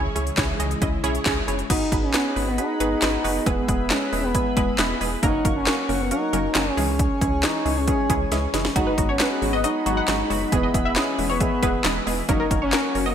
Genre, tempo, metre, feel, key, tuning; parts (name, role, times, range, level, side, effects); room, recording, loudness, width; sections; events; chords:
synth-pop; 136 BPM; 4/4; straight; G# minor; A4 = 442 Hz
wide unison pluck; accompaniment; 0.0-13.1 s; E3 to D#5; -26 LUFS; right 2 dB; analog chorus
chorused pulse-width pad; sustained chords; 0.0-13.1 s; C#3 to C#6; -31 LUFS; right 1 dB
rubbery square bass; bass; 0.0-13.1 s; E1 to C#2; -29 LUFS; equal
house drum kit; drums; 0.2-13.1 s; crash cymbal, handclaps, hi-hat, kick drum, snare drum; -24 LUFS; equal; overdrive, gated reverb
expressive portamento lead; melody; 1.7-13.1 s; A#3 to D#4; -25 LUFS; left 1 dB; chorus, digital delay
funky polysynth comp; second line; 8.9-13.1 s; A#4 to F#5; -28 LUFS; left 2 dB; chorus, digital delay
moderate lush hall reverb, RT60 1.9 s; bright 1980s-style digital production; -20 LUFS; side -8 dB against mid
0.0-1.7 A section; 1.7-13.1 B section
drum fill 8.3-8.8
0.0 C#m; 1.7 G#m7; 3.5 E; 5.2 F#; 6.8 C#m; 8.8 G#m7; 10.5 E; 12.3 F#